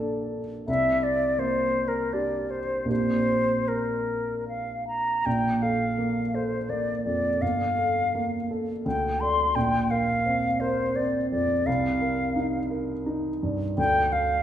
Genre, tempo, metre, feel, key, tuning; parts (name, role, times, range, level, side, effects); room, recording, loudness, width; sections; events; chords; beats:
classical, impressionist duo for flute and grand piano; 75-87 BPM; 3/4; rubato; Bb major; A4 = 440 Hz
warm grand piano; accompaniment; 0.0-14.4 s; G1 to D5; -27 LUFS; right 1 dB
concert flute; melody; 0.7-14.4 s; Bb4 to C6; -25 LUFS; left 1 dB
wet recital hall reverb, RT60 1.6 s; heard from further back in the room; -23 LUFS; side -10 dB against mid
0.0-5.3 A section; 5.3-14.4 B section
0.0 Bbmaj7; 0.7 Csus2; 2.9 Bb69; 5.3 Bb5; 7.4 Gm9; 8.9 D5; 9.6 Bbsus2; 11.7 Cm7; 13.8 Dm
| 0.68 1.39 2.13 | 2.90 3.69 4.48 | 5.25 5.98 6.70 | 7.42 8.14 8.86 | 9.55 10.26 10.96 | 11.67 12.36 13.07 | 13.78